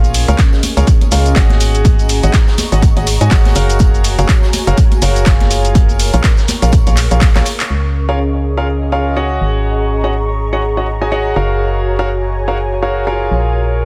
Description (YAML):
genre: piano house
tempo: 123 BPM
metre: 4/4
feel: swing 58% on 16ths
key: Db major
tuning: A4 = 441 Hz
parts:
  - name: clear concert grand piano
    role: riff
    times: 0.0-13.8 s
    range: F4 to Ab5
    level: -21 LUFS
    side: equal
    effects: sidechain pumping, tape echo
  - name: organ-like FM bass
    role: bass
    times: 0.0-13.8 s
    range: Gb1 to Ab2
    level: -18 LUFS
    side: equal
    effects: tube saturation, sidechain pumping
  - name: punchy analog drum machine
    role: drums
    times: 0.0-7.7 s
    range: handclaps, hi-hat, shaker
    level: -22 LUFS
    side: equal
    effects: none
  - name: tambourine and congas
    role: percussion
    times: 0.0-7.7 s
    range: none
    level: -28 LUFS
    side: equal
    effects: none
  - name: airy breathy pad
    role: texture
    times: 0.1-13.8 s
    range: Db4 to Db6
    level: -25 LUFS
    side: equal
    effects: chorus, sidechain pumping
  - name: loose indie drum kit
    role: drums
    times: 0.1-7.6 s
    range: hi-hat, snare drum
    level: -32 LUFS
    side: equal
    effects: none
  - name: electronic kick drum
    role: drums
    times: 0.4-7.3 s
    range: none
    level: -14 LUFS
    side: equal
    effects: none
room: studio ambience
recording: dense, heavily limited modern master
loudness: -13 LUFS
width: mono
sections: 0.0-7.7 A section; 7.7-13.8 B section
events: drum fill 7.3-7.7; band accent 7.6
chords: 0.0 Db6; 1.6 Ab7sus4; 3.6 Gbmaj9; 7.7 Db6; 9.4 Ab7sus4; 11.4 Gbmaj9; 13.3 Bbm7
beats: 0.39 0.87 1.36 | 1.85 2.34 2.83 3.31 | 3.80 4.29 4.78 5.26 | 5.75 6.24 6.73 7.21 | 7.70 8.19 8.68 9.17 | 9.65 10.14 10.63 11.12 | 11.61 12.09 12.58 13.07 | 13.56